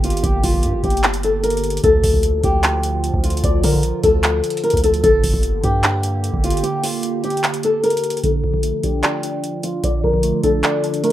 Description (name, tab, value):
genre	hip hop, trap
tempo	150 BPM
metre	4/4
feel	half-time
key	D minor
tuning	A4 = 440 Hz
part	flamenco guitar	melody	0.0-11.1 s	F4 to D5	-19 LUFS	left 2 dB	low-pass filter
part	dark analog pad	sustained chords	0.0-11.1 s	D3 to G4	-26 LUFS	right 2 dB	chorus, phaser, low-pass filter
part	long sustained 808-style bass	bass	0.0-6.6 s	G1 to D3	-21 LUFS	equal	none
part	booming analog drum machine	drums	0.0-11.1 s	handclaps, hi-hat, kick drum	-20 LUFS	equal	none
part	glassy wavetable pluck	accompaniment	8.2-11.1 s	D3 to D5	-23 LUFS	right 2 dB	chorus, low-pass filter
room	light reverb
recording	rough home demo mix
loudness	-15 LUFS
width	side -13 dB against mid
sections	0.0-8.2 A section; 8.2-11.1 B section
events	break 6.6-8.2; filter sweep 8.2-11.1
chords	0.0 Gm; 1.8 Dm; 5.0 Gm; 8.2 Dm